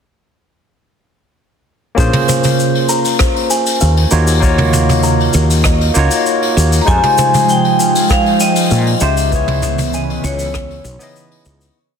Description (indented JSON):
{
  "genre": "sunset chillout",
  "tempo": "98 BPM",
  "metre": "4/4",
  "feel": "straight",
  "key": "Bb minor",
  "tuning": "A4 = 439 Hz",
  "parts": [
    { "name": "barky tine electric piano", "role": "accompaniment", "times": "1.9-11.8 s", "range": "Ab3 to Eb5", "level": "-18 LUFS", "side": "equal", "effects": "auto-pan, tape echo, shimmer reverb" },
    { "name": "kalimba", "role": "arpeggios", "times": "2.0-10.7 s", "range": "G4 to Bb5", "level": "-21 LUFS", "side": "left 3 dB", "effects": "tape echo, shimmer reverb" },
    { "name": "woody fretless electric bass", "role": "bass", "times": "2.0-11.7 s", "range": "Bb1 to Bb2", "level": "-14 LUFS", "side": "equal", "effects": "analog chorus" },
    { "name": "electronic kick drum", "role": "drums", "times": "2.0-10.7 s", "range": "none", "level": "-16 LUFS", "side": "equal", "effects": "none" },
    { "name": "jazz brush drum kit", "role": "drums", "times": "2.0-11.7 s", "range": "hi-hat, rim click, shaker, toms", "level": "-17 LUFS", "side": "right 2 dB", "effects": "none" },
    { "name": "vibraphone with medium hard mallets", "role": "melody", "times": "6.8-11.1 s", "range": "Db5 to Bb5", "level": "-16 LUFS", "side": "left 2 dB", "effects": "vintage 12-bit sampler grit, tape echo, shimmer reverb" },
    { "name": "airy breathy pad", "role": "sustained chords", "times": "7.1-11.8 s", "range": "Db3 to Cb4", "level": "-19 LUFS", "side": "right 2 dB", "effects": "chorus, phaser, shimmer reverb" }
  ],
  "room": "moderate lush hall reverb, RT60 1.9 s, studio ambience",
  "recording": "dense, heavily limited modern master",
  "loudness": "-11 LUFS",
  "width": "side -7 dB against mid",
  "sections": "2.0-11.8 groove",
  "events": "fade-out 8.5-11.8",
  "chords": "2.0 Bbm9; 4.1 Ebm9; 6.9 Fm9; 9.3 Dbm9"
}